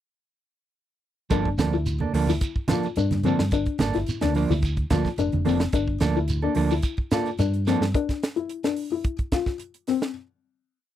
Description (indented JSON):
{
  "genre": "afrobeat",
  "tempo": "108 BPM",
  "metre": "4/4",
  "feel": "straight",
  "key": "G dorian",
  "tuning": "A4 = 440 Hz",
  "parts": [
    { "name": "felt-muted upright piano", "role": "arpeggios", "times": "1.3-10.1 s", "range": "C4 to F4", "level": "-27 LUFS", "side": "left 9 dB", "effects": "none" },
    { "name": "mellow electric guitar", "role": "stabs", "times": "1.3-7.8 s", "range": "F3 to A4", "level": "-25 LUFS", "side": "right 6 dB", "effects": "none" },
    { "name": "hollow-body short-scale fingered electric bass", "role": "bass", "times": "1.3-7.9 s", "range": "F1 to G2", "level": "-26 LUFS", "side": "equal", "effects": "none" },
    { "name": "tight funk drum kit", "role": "drums", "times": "1.3-10.1 s", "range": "hi-hat, kick drum, snare drum", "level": "-27 LUFS", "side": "right 1 dB", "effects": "none" },
    { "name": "congas", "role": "percussion", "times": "1.3-5.6 s", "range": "none", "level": "-30 LUFS", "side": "right 4 dB", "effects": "none" },
    { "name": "shekere", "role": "percussion", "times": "1.3-8.0 s", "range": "none", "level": "-33 LUFS", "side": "right 3 dB", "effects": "none" }
  ],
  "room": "little or no reverb",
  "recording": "dry, close 1970s-style studio recording",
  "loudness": "-22 LUFS",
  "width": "side -11 dB against mid",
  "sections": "1.3-10.2 groove",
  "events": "none",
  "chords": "1.3 Gm9"
}